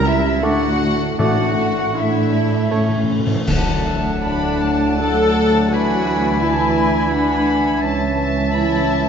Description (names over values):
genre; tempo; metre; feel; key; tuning
classical, slow romantic movement for symphony orchestra; 75-87 BPM; 3/4; rubato; D major; A4 = 439 Hz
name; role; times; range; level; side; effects
warm chamber violin section; melody; 0.0-9.1 s; D5 to A5; -31 LUFS; left 4 dB; none
mellow clarinet; second line; 0.0-9.1 s; E4 to F#5; -30 LUFS; equal; none
small flute group; second line; 0.0-9.1 s; E5 to B5; -27 LUFS; equal; none
warm chamber violin section; second line; 0.0-9.1 s; E4 to B5; -29 LUFS; left 3 dB; none
dark chamber viola section; accompaniment; 0.0-9.1 s; G3 to A4; -22 LUFS; equal; none
dark French horn section; sustained chords; 0.0-9.1 s; D3 to A4; -25 LUFS; left 3 dB; none
warm trombone section; sustained chords; 0.0-9.1 s; A2 to D4; -24 LUFS; equal; none
mellow trumpet section; stabs; 0.0-9.1 s; E4 to A5; -26 LUFS; left 1 dB; none
dark chamber cello section; bass; 0.0-9.1 s; C#2 to A2; -24 LUFS; right 2 dB; none
dark chamber double bass section; bass; 0.0-9.1 s; A1 to D2; -25 LUFS; right 4 dB; none
warm oboe; second line; 0.4-9.1 s; C#5 to A5; -30 LUFS; right 1 dB; none
warm bassoon; accompaniment; 0.4-9.1 s; A2 to A3; -28 LUFS; right 2 dB; none
timpani; percussion; 1.2-4.6 s; A2 to D3; -24 LUFS; left 3 dB; none
clash cymbals and concert bass drum; percussion; 3.5-5.0 s; none; -28 LUFS; equal; none
room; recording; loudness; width
wet scoring stage reverb, RT60 1.9 s; nothing above 7.9 kHz; -15 LUFS; side -7 dB against mid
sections
0.0-3.5 A section; 3.5-9.1 B section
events
timpani fill 2.7-3.5; band accent 3.5-4.2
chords
0.4 D; 1.2 Asus4; 2.7 A; 3.5 D; 5.7 E7/D; 7.8 A/C#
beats
0.44 | 1.19 1.96 2.72 | 3.48 4.23 5.01 | 5.72 6.43 7.12 | 7.82 8.53